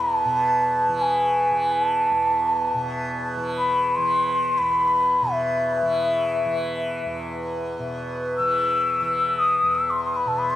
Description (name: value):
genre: indian classical, Hindustani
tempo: free time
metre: none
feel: none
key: unclear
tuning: A4 = 443 Hz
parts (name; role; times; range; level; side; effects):
- breathy mellow bansuri; melody; 0.0-10.6 s; E5 to E6; -20 LUFS; left 1 dB; dub echo
- tanpura; drone; 0.0-10.6 s; E2 to E3; -28 LUFS; equal; none
room: wet spring reverb, RT60 1.2 s, small room ambience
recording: echo-heavy mix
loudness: -20 LUFS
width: side -13 dB against mid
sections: 0.0-7.8 A section; 7.8-10.6 A section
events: none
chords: none